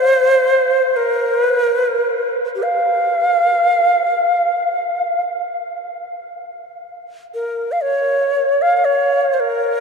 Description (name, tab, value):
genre	world meditative, free-time meditation music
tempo	free time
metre	none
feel	none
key	Bb minor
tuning	A4 = 440 Hz
part	Native American-style cedar flute	solo	0.0-9.8 s	G4 to F5	-15 LUFS	equal	ping-pong delay
room	wet huge ambient reverb, RT60 7.6 s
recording	in a vast, echoing space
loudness	-14 LUFS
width	side -5 dB against mid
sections	0.0-9.8 A section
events	none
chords	none